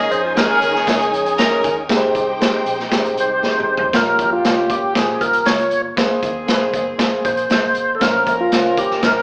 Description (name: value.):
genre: uptempo 1960s-style soul.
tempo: 118 BPM.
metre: 4/4.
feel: straight.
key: Bb dorian.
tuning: A4 = 442 Hz.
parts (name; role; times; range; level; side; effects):
tonewheel organ; melody; 0.0-9.2 s; F4 to Eb5; -20 LUFS; equal; overdrive, chorus vibrato, slow rotary speaker.
warm horn section; second line; 0.0-9.2 s; Db3 to Bb4; -26 LUFS; equal; none.
warm studio string section; second line; 0.0-3.9 s; Eb4 to Ab5; -28 LUFS; equal; none.
dark upright piano; accompaniment; 0.0-9.2 s; G3 to Eb5; -25 LUFS; equal; none.
tonewheel organ; sustained chords; 0.0-3.9 s; Ab3 to Ab4; -33 LUFS; equal; none.
vintage muted fingered electric bass; bass; 0.0-9.2 s; G1 to F2; -42 LUFS; equal; none.
crunchy breakbeat drum kit; drums; 0.1-9.1 s; hi-hat, kick drum, snare drum, toms; -22 LUFS; equal; none.
room: moderate large studio reverb, RT60 1.2 s.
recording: band playing live in one room, AM radio sound.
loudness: -17 LUFS.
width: mono.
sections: 0.0-3.9 A section; 3.9-9.2 B section.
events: drum fill 3.4-3.9.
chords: 0.0 Eb7sus4; 1.9 Abmaj7; 3.9 Bbm; 6.0 Abadd9; 8.0 Bbmadd9.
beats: 0.36 0.87 1.38 | 1.89 2.40 2.91 3.42 | 3.93 4.44 4.95 5.46 | 5.97 6.48 6.99 7.50 | 8.01 8.52 9.03.